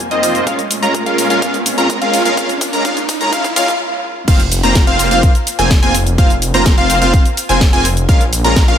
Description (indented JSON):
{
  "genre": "EDM, festival progressive house",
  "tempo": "126 BPM",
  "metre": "4/4",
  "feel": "straight",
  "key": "unclear",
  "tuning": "A4 = 439 Hz",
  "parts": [
    { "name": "dark symphonic string section", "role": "sustained chords", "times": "0.0-4.2 s", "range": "F2 to Db4", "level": "-25 LUFS", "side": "right 3 dB", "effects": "sidechain pumping, low-pass filter" },
    { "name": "house drum kit", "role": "drums", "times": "0.0-8.8 s", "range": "cabasa, crash cymbal, hi-hat, snare drum", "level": "-19 LUFS", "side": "equal", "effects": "small room ambience" },
    { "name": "riser", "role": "sound effects", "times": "0.0-3.8 s", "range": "none", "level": "-24 LUFS", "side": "right 1 dB", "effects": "none" },
    { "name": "plucky unison lead", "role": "arpeggios", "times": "0.1-8.8 s", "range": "Eb5 to Bb5", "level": "-18 LUFS", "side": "equal", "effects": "sidechain pumping, dub echo" },
    { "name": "supersaw chords", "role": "riff", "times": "0.1-8.8 s", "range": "Ab3 to Bb5", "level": "-17 LUFS", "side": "equal", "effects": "lush chorus, vintage 12-bit sampler grit, sidechain pumping, low-pass filter, dub echo" },
    { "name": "electronic kick drum", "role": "drums", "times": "0.5-8.7 s", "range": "none", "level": "-12 LUFS", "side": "equal", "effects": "high-pass filter on kick, small room ambience" },
    { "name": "wide detuned saw bass", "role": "bass", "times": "4.3-8.8 s", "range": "F1 to Bb1", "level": "-17 LUFS", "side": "equal", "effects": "chorus, sidechain pumping" }
  ],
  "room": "light reverb",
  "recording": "high-pass filter",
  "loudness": "-11 LUFS",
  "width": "side -9 dB against mid",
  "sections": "0.0-4.3 A section; 4.3-8.8 B section",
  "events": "build-up 0.0-4.3; riser 0.0-3.8; filter sweep on digital synth lead 0.0-4.3; drum fill 0.5-3.8; break 3.8-4.3; drop 4.3-8.8",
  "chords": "0.5 Bbm7; 4.3 Fsus4; 8.1 Bbm7"
}